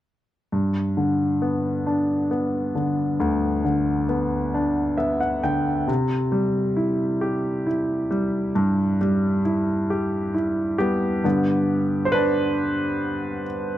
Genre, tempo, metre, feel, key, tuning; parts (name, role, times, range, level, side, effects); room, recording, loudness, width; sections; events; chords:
pop; 45 BPM (dotted quarters); 6/8; straight; G major; A4 = 439 Hz
clear grand piano; accompaniment; 0.5-13.8 s; D2 to G5; -20 LUFS; equal
small room reverb; dry, close 1970s-style studio recording; -20 LUFS; side -13 dB against mid
0.5-11.2 A section; 11.2-13.8 B section
grand piano fill 4.5-5.9; grand piano solo 11.2-13.8
0.5 G; 5.9 C; 11.2 G